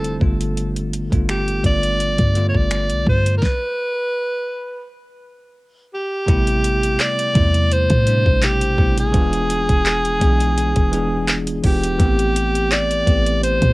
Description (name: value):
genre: contemporary R&B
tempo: 84 BPM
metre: 4/4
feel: swing 54% on 16ths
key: A minor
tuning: A4 = 439 Hz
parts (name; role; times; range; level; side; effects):
- breathy alto saxophone; melody; 0.0-13.7 s; G4 to D5; -21 LUFS; equal; cassette tape
- bell-like tine electric piano; accompaniment; 0.0-13.7 s; B2 to G#4; -22 LUFS; equal; medium stereo tremolo, cassette tape
- clean 808-style bass; bass; 0.0-13.7 s; E1 to A2; -20 LUFS; equal; none
- smooth R&B drum kit; drums; 0.0-13.7 s; finger snaps, handclaps, hi-hat, kick drum, snare drum; -19 LUFS; equal; none
room: little or no reverb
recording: home recording on cassette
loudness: -16 LUFS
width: side -21 dB against mid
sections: 0.0-6.3 A section; 6.3-13.7 B section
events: stop 3.4-6.3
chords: 0.2 G9; 3.4 N.C.; 6.3 Am7; 9.1 E7b9; 12.0 Am7